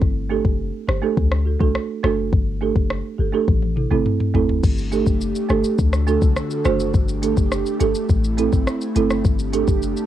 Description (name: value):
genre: dancehall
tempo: 104 BPM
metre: 4/4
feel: straight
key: unclear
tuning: A4 = 440 Hz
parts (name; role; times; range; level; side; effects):
- clean 808-style bass; bass; 0.0-9.9 s; F#1 to D2; -22 LUFS; left 2 dB; none
- afro-pop drum kit; drums; 0.0-10.1 s; crash cymbal, hi-hat, kick drum, rim click, shaker, toms; -20 LUFS; left 2 dB; cassette tape
- folk marimba with medium mallets; accompaniment; 0.3-9.7 s; A3 to C5; -22 LUFS; right 8 dB; sidechain pumping, cassette tape
- airy breathy pad; sustained chords; 4.6-10.1 s; D3 to A4; -25 LUFS; left 1 dB; chorus, sidechain pumping, cassette tape
room: little or no reverb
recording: home recording on cassette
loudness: -17 LUFS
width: side -12 dB against mid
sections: 0.0-4.6 A section; 4.6-10.1 B section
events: drum fill 3.5-4.6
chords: 0.0 Gsus2; 1.2 D; 2.3 Gsus2; 3.5 Am; 4.6 Gsus2; 5.8 D; 6.9 Gsus2; 8.1 Am; 9.2 Gsus2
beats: | 0.02 0.59 1.17 1.75 | 2.33 2.90 3.48 4.06 | 4.63 5.21 5.79 6.36 | 6.94 7.52 8.10 8.67 | 9.25 9.83